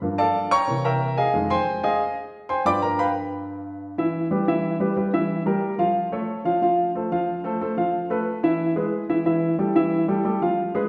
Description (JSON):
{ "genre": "jazz", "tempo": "182 BPM", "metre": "4/4", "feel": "straight", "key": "unclear", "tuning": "A4 = 442 Hz", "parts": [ { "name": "warm baby grand piano", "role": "solo", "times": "0.0-10.9 s", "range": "F2 to D6", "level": "-23 LUFS", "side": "equal", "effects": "none" } ], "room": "wet recital hall reverb, RT60 1.3 s", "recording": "recorded in a church or concert hall", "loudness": "-23 LUFS", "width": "mono", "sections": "0.0-4.0 A section; 4.0-10.9 B section", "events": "grand piano solo 0.0-4.0", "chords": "0.0 Gm9; 0.7 C7b9; 1.3 Fm9; 2.7 G7; 4.0 Em; 5.3 Edim; 6.0 Aaug; 6.6 F; 7.9 Fmaj7#11; 8.6 E; 9.3 A5", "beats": "| 0.02 0.35 0.68 1.01 | 1.34 1.67 2.00 2.33 | 2.65 2.98 3.31 3.64 | 3.97 4.30 4.63 4.96 | 5.30 5.63 5.96 6.29 | 6.62 6.95 7.28 7.61 | 7.94 8.27 8.60 8.93 | 9.26 9.59 9.92 10.25 | 10.58" }